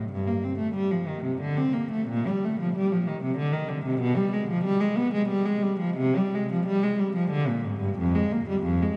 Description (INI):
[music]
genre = classical, baroque-style suite movement for unaccompanied cello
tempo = 92 BPM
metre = 3/4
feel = uneven beats, rubato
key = G minor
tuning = A4 = 440 Hz
[part]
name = warm cello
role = solo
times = 0.0-9.0 s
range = F2 to C4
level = -26 LUFS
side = equal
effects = none
[sound]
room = wet cathedral reverb, RT60 6.6 s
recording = heard from further back in the room, nothing above 10.5 kHz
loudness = -26 LUFS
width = mono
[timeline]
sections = 0.0-9.0 A section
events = none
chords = none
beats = | 0.10 0.76 1.42 | 2.09 2.75 3.38 | 4.01 4.64 5.29 | 5.97 6.65 7.30 | 7.95 8.62